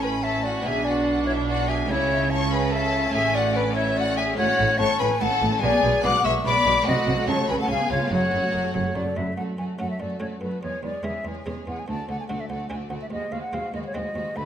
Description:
classical, baroque-style concerto movement with solo episodes; 145 BPM; 3/4; straight; A major, F# minor from 4.4 s; A4 = 436 Hz
concert flute; melody; 0.0-14.5 s; B4 to D6; -26 LUFS; left 1 dB
rich chamber violin section; melody; 0.0-14.5 s; A4 to F#6; -30 LUFS; left 4 dB
rich chamber violin section; second line; 0.0-14.5 s; D4 to F#5; -30 LUFS; left 3 dB
buff-stop harpsichord; accompaniment; 0.0-14.5 s; D2 to A4; -33 LUFS; equal
clear symphonic viola section; accompaniment; 0.0-14.5 s; Gb3 to D4; -30 LUFS; right 2 dB
rich chamber cello section; bass; 0.0-14.4 s; D2 to C#3; -30 LUFS; right 3 dB
rich chamber double bass section; bass; 0.0-9.3 s; F#1 to C#2; -30 LUFS; right 3 dB
wet recital hall reverb, RT60 1.8 s; -21 LUFS; side -9 dB against mid
0.0-9.4 A section; 9.4-14.5 B section
0.0 A; 0.7 E5/B; 1.9 A/C#; 3.1 A; 4.4 F#m/A; 5.6 G#m7b5/B; 6.9 Cdim7; 7.3 F#m/C#; 7.7 C#7; 8.1 F#m; 10.6 C#m/E; 11.9 D; 13.1 G#7/D#

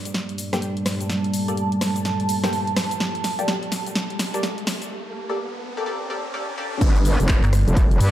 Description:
bass house; 126 BPM; 4/4; swing 62% on 16ths; G minor; A4 = 440 Hz
dark analog pad; sustained chords; 0.0-8.1 s; G3 to D5; -26 LUFS; right 1 dB; chorus, sidechain pumping
riser and downlifter; sound effects; 1.8-8.1 s; -33 LUFS; equal
deep dark ambient pad; texture; 0.2-4.9 s; Bb3 to A5; -30 LUFS; right 4 dB; chorus, built-in reverb, sidechain pumping
house drum kit; drums; 0.1-8.1 s; crash cymbal, handclaps, hi-hat, ride cymbal, rim click, shaker, snare drum; -26 LUFS; equal; studio reverb
band-passed chord stab; stabs; 0.5-6.8 s; Bb3 to G5; -30 LUFS; left 2 dB; phaser, wide subtle chorus, sidechain pumping, digital delay
metallic wobble bass; bass; 6.8-8.1 s; F1 to G2; -19 LUFS; equal; chorus, overdrive, sidechain pumping
electronic kick drum; drums; 6.8-7.9 s; -19 LUFS; equal; studio reverb
metallic FM bass; bass; 7.4-7.7 s; G1; -17 LUFS; equal; tube saturation, sidechain pumping
light reverb, digital ambience; dark, warm production, high-pass filter; -20 LUFS; side -12 dB against mid
0.0-6.8 A section; 6.8-8.1 B section
build-up 0.0-6.8; drum fill 0.0-4.9; filter sweep on synth stab 0.0-6.8; riser 1.8-6.8; break 4.9-6.8; drop 6.8-8.1
0.0 Gmadd9

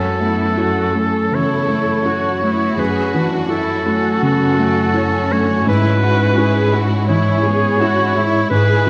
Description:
cinematic, emotional film score for orchestra; 83 BPM; 4/4; rubato; F# minor; A4 = 440 Hz
clear symphonic violin section; second line; 0.0-8.9 s; A3 to F#4; -28 LUFS; equal
warm oboe; second line; 0.0-8.9 s; A4 to C#5; -21 LUFS; equal
felt-muted upright piano; accompaniment; 0.0-8.9 s; F#2 to E4; -22 LUFS; equal
rich symphonic viola section; accompaniment; 0.0-8.9 s; D3 to A4; -25 LUFS; equal
concert harp; arpeggios; 0.0-8.9 s; F#2 to C#6; -27 LUFS; equal
rich symphonic cello section; bass; 0.0-8.9 s; F#2 to G#2; -24 LUFS; equal
wet concert hall reverb, RT60 2.4 s; -16 LUFS; mono
0.0-8.9 A section
0.0 F#m7; 5.7 C#m/G#

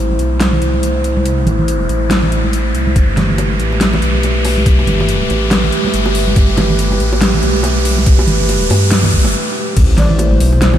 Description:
deep dubstep; 141 BPM; 4/4; swing 59% on 16ths, half-time; A4 = 439 Hz
dark analog pad; sustained chords; 0.0-10.8 s; A3 to C5; -19 LUFS; right 1 dB; chorus
dark detuned saw bass; bass; 0.0-10.8 s; G1 to G2; -15 LUFS; equal
riser and sub drop; sound effects; 0.0-10.8 s; -21 LUFS; equal
congas and bongos; percussion; 0.1-10.8 s; -19 LUFS; right 2 dB; dub echo
dubstep drum kit; drums; 0.2-10.7 s; crash cymbal, hi-hat, snare drum; -20 LUFS; left 1 dB
electronic kick drum; drums; 3.0-9.9 s; -12 LUFS; equal
breathy low ney; melody; 10.0-10.3 s; D5; -23 LUFS; left 2 dB; dub echo
moderate huge ambient reverb, RT60 6.3 s; dreamy mix soaked in reverb; -11 LUFS; side -11 dB against mid
0.0-9.8 A section; 9.8-10.8 B section
build-up 0.0-9.8; riser 0.0-9.3; break 9.3-9.8; drop 9.8-10.8; impact 9.8-10.8
0.0 Am; 3.0 Gadd9; 9.8 Am

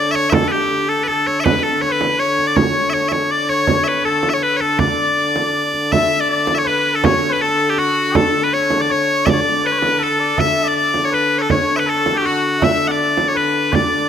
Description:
medieval dance; 161 BPM; 3/4; straight; D major; A4 = 438 Hz
loud bright bagpipes; melody; 0.0-14.1 s; F#4 to F#5; -17 LUFS; equal
bright shawm; second line; 0.0-14.1 s; F#4 to E5; -21 LUFS; left 6 dB
dark hurdy-gurdy; drone; 0.0-14.1 s; D3; -23 LUFS; left 1 dB
frame drum; percussion; 0.1-14.0 s; -20 LUFS; right 4 dB
moderate concert hall reverb, RT60 2.0 s; close, detailed microphones; -14 LUFS; side -8 dB against mid
0.0-5.9 A section; 5.9-14.1 B section

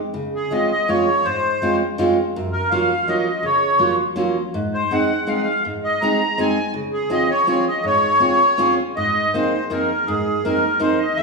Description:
musette waltz; 164 BPM; 3/4; straight; Db major; A4 = 443 Hz
fingerpicked steel-string acoustic guitar; accompaniment; 0.1-11.2 s; E2 to Ab4; -20 LUFS; right 1 dB
accordion; melody; 0.4-11.2 s; Ab4 to Bb5; -19 LUFS; equal; light tremolo tuning
wet large studio reverb, RT60 1.3 s; band playing live in one room, small room reverb; -17 LUFS; side -3 dB against mid
0.1-9.0 A section; 9.0-11.2 B section
0.1 Dbmaj7; 2.4 Gbmaj7; 4.5 Ab; 6.7 Dbmaj7; 9.0 Abadd9

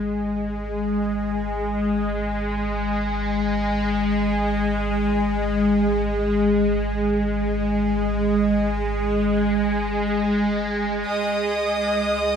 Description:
ambient; free time; A4 = 437 Hz
warm sub bass; bass; 0.0-12.4 s; G#1 to C#2; -30 LUFS; right 1 dB
bowed-like drone; drone; 0.0-12.4 s; G#3; -21 LUFS; equal; built-in reverb, phaser
clear chamber violin section; texture; 11.1-12.4 s; D#5 to D#6; -22 LUFS; right 1 dB
wet huge ambient reverb, RT60 8.2 s; dark, warm production; -20 LUFS; side -7 dB against mid
0.0-12.4 A section
fade-in on sub bass 0.0-12.4
0.0 N.C.; 11.1 C#5

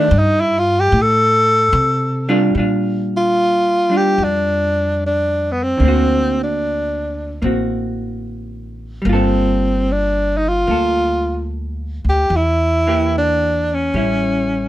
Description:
jazz ballad; 74 BPM; 4/4; swing 68% on 8ths; Bb major; A4 = 440 Hz
mellow tenor saxophone; melody; 0.0-14.7 s; Cb4 to A4; -16 LUFS; equal
vintage hollow-body jazz guitar; accompaniment; 0.0-14.7 s; D3 to A4; -20 LUFS; equal
upright bass; bass; 0.1-14.7 s; G1 to C3; -21 LUFS; equal
little or no reverb; close, detailed microphones; -14 LUFS; side -14 dB against mid
0.0-2.5 A section; 2.5-14.7 B section
tenor saxophone solo 0.0-2.5
0.0 F69 (rootless); 2.5 Bb6; 5.8 D7b13; 9.0 Gm9; 12.3 Edim; 13.9 A7

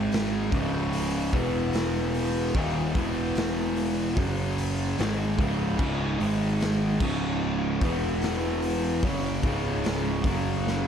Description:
stoner and doom metal; 74 BPM; 4/4; straight; C# minor; A4 = 442 Hz
fuzz guitar; riff; 0.0-10.9 s; C#2 to G#3; -26 LUFS; equal; distortion
fuzz picked electric bass; bass; 0.0-10.9 s; C#1 to G#1; -31 LUFS; equal; overdrive
raw garage drum kit; drums; 0.1-10.8 s; crash cymbal, hi-hat, kick drum, snare drum; -31 LUFS; equal
studio reverb; dark, warm production; -24 LUFS; side -8 dB against mid
0.0-10.9 A section
drum fill 10.7
0.0 G#5; 0.5 C#5; 1.3 E5; 2.5 D#5; 3.0 E5; 4.2 F#5; 5.0 C#5; 6.2 G#5; 7.0 C#5; 7.8 E5; 9.0 C#5; 10.2 F#5

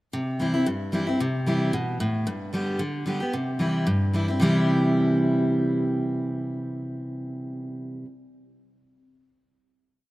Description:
bluegrass; 224 BPM; 4/4; swing 54% on 8ths; C major; A4 = 440 Hz
picked steel-string acoustic guitar; solo; 0.1-8.1 s; G2 to G4; -23 LUFS; equal
light reverb, small room ambience; rough home demo mix, lossy compression artefacts; -23 LUFS; side -18 dB against mid
0.1-4.4 A section; 4.4-6.5 final chord
0.1 C; 2.3 G; 3.3 C

